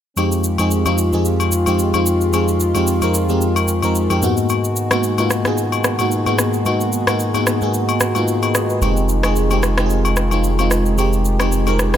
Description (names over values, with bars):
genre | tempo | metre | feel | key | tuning
amapiano | 111 BPM | 4/4 | swing 55% on 16ths | F minor | A4 = 440 Hz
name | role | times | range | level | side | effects
FM electric piano with soft pad layer | accompaniment | 0.2-12.0 s | F2 to Eb5 | -17 LUFS | equal | chorus
warm French horn section | sustained chords | 0.2-12.0 s | Cb3 to G4 | -24 LUFS | left 2 dB | none
electronic shaker and rim click | drums | 0.2-12.0 s | none | -22 LUFS | equal | none
agogo bells | percussion | 0.2-11.8 s | none | -25 LUFS | left 9 dB | none
punchy sub bass | bass | 8.8-12.0 s | F1 | -18 LUFS | equal | none
room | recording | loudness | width
small room ambience | none | -15 LUFS | side -10 dB against mid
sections
0.2-12.0 A section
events
none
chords
0.2 Fm7; 4.2 Abm7; 8.8 Fm7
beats
| 0.17 0.71 1.25 1.79 | 2.33 2.87 3.41 3.95 | 4.49 5.03 5.57 6.12 | 6.66 7.20 7.74 8.28 | 8.82 9.36 9.90 10.44 | 10.98 11.52